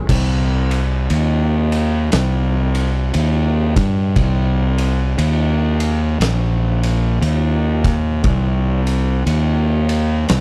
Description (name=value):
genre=stoner and doom metal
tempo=59 BPM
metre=4/4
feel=swing 61% on 8ths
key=C minor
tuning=A4 = 435 Hz
part: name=fuzz fingered electric bass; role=bass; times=0.1-10.4 s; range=Bb1 to G2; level=-18 LUFS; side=equal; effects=overdrive
part: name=oversized low-tuned drum kit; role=drums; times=0.1-10.4 s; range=crash cymbal, kick drum, ride cymbal, snare drum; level=-25 LUFS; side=equal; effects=none
room=little or no reverb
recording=none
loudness=-17 LUFS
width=mono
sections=0.1-10.4 A section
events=none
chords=none